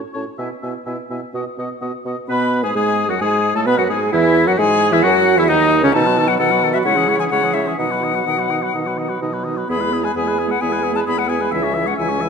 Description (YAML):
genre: quick classical-period movement for wind quintet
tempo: 130 BPM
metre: 4/4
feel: straight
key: E major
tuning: A4 = 442 Hz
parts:
  - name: bright clarinet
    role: accompaniment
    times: 0.0-12.3 s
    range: C#4 to B4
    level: -24 LUFS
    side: right 9 dB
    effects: none
  - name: mellow French horn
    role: accompaniment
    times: 0.0-12.3 s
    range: C#3 to C#4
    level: -23 LUFS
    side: equal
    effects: none
  - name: warm oboe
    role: second line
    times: 0.1-12.3 s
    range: C#4 to E5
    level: -23 LUFS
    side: left 3 dB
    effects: none
  - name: silver concert flute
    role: melody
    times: 0.2-12.3 s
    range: C#5 to B5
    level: -20 LUFS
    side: left 8 dB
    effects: none
  - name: mellow bassoon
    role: bass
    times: 0.2-12.3 s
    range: C#2 to C#3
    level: -22 LUFS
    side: right 3 dB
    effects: none
room: wet recital hall reverb, RT60 1.8 s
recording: nothing above 10.8 kHz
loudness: -15 LUFS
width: side -6 dB against mid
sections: 0.0-2.3 A section; 2.3-12.3 B section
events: none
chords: 0.4 E5/B; 1.3 B; 2.3 F#sus24; 4.1 Eadd9; 5.0 F#5; 5.9 B7; 6.9 C#m; 7.8 B; 9.7 E; 11.5 C#m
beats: | 0.39 0.86 1.34 1.81 | 2.28 2.75 3.21 3.66 | 4.12 4.58 5.04 5.49 | 5.95 6.40 6.86 7.31 | 7.78 8.26 8.74 9.21 | 9.69 10.15 10.61 11.07 | 11.53 11.99